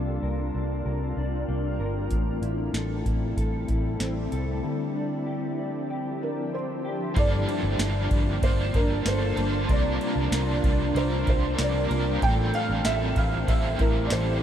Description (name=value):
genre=dream pop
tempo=95 BPM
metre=4/4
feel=straight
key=G dorian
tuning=A4 = 440 Hz
part: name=shimmering ambient pad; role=sustained chords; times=0.0-14.4 s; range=F3 to A5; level=-31 LUFS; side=equal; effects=chorus, built-in reverb
part: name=mellow electric guitar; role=arpeggios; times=0.0-14.4 s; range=G2 to Bb4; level=-32 LUFS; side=left 2 dB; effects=ensemble chorus, tape echo
part: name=vintage muted fingered electric bass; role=bass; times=0.0-14.4 s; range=G1 to C2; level=-28 LUFS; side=equal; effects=none
part: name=booming analog drum machine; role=drums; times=2.1-14.3 s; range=hi-hat, kick drum, ride cymbal, snare drum, tambourine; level=-26 LUFS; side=equal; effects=none
part: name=felt-muted upright piano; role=melody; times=6.2-14.4 s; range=Bb4 to G5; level=-30 LUFS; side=right 2 dB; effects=ensemble chorus, tape echo
part: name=biting overdriven guitar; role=accompaniment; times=7.1-14.4 s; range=G2 to Bb4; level=-33 LUFS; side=right 2 dB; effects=tremolo, wide subtle chorus
room=moderate huge ambient reverb, RT60 9.0 s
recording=dreamy mix soaked in reverb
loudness=-23 LUFS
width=side -10 dB against mid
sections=0.0-7.2 A section; 7.2-14.4 B section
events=break 4.6-7.2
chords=0.0 C9sus4; 2.1 Am7; 4.6 Dm11; 7.2 Gm9; 9.7 C9sus4; 12.2 Am7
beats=0.22 0.85 1.48 | 2.12 2.75 3.38 4.01 | 4.64 5.27 5.91 6.54 | 7.17 7.80 8.43 9.06 | 9.69 10.33 10.96 11.59 | 12.22 12.85 13.48 14.12